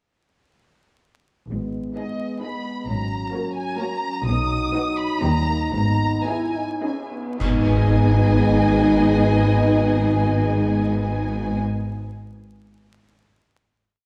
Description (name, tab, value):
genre	classical, dramatic, fast romantic movement for symphony orchestra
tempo	104-133 BPM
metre	3/4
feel	rubato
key	G# minor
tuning	A4 = 440 Hz
part	mellow French horn section	sustained chords	1.5-11.6 s	F#3 to E4	-27 LUFS	equal	none
part	rich studio cello section	bass	1.5-11.6 s	D#2 to B2	-26 LUFS	equal	none
part	rich symphonic double bass section	bass	1.5-11.6 s	G#1 to D#2	-27 LUFS	equal	none
part	warm symphonic violin section	melody	2.0-11.6 s	D#5 to D#6	-31 LUFS	equal	none
part	rich symphonic violin section	second line	2.0-11.6 s	F#4 to D#5	-32 LUFS	equal	none
part	dark symphonic viola section	accompaniment	2.0-11.6 s	A#3 to F#4	-29 LUFS	equal	none
part	cymbal swell, clash cymbals and concert bass drum	percussion	4.3-8.5 s	none	-33 LUFS	equal	none
room	wet scoring stage reverb, RT60 1.8 s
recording	worn, warbling old tape, cassette tape, vinyl crackle, warbly pitch drift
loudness	-21 LUFS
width	mono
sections	1.5-7.4 A section; 7.4-10.8 final chord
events	slowing down 3.6-7.4; band accent 7.4-8.0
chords	1.5 G#m; 2.9 F#/G#; 4.3 B; 5.2 D#; 5.7 G#m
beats	| 1.51 1.97 2.43 | 2.88 3.34 3.79 | 4.27 4.75 5.23 | 5.74 6.28 6.83 | 7.40 7.97 8.54 | 9.11 9.69 10.26